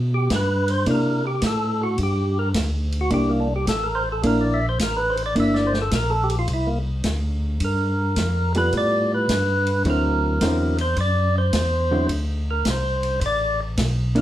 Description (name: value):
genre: soul jazz organ trio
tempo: 107 BPM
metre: 4/4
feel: swing 68% on 8ths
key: unclear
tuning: A4 = 439 Hz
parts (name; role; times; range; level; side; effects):
- tonewheel organ; bass; 0.0-14.2 s; G1 to C3; -23 LUFS; equal; overdrive, chorus vibrato, slow rotary speaker
- percussive tonewheel organ; melody; 0.1-14.2 s; Bb3 to E5; -23 LUFS; equal; slow rotary speaker
- vintage drum kit; drums; 0.3-14.2 s; hi-hat, kick drum, ride cymbal, snare drum; -28 LUFS; equal; none
- hollow-body jazz guitar; accompaniment; 0.9-14.2 s; D3 to A4; -22 LUFS; equal; none
room: wet studio reverb, RT60 0.6 s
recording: heard from further back in the room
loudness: -19 LUFS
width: side -13 dB against mid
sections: 0.0-14.2 A section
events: tonewheel organ solo 0.0-14.2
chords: 0.0 G; 0.9 C9; 7.6 G9; 9.9 D9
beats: 0.31 | 0.87 1.43 1.99 2.56 | 3.12 3.68 4.24 4.80 | 5.36 5.92 6.49 7.05 | 7.61 8.17 8.73 9.29 | 9.85 10.41 10.97 11.54 | 12.10 12.66 13.22 13.78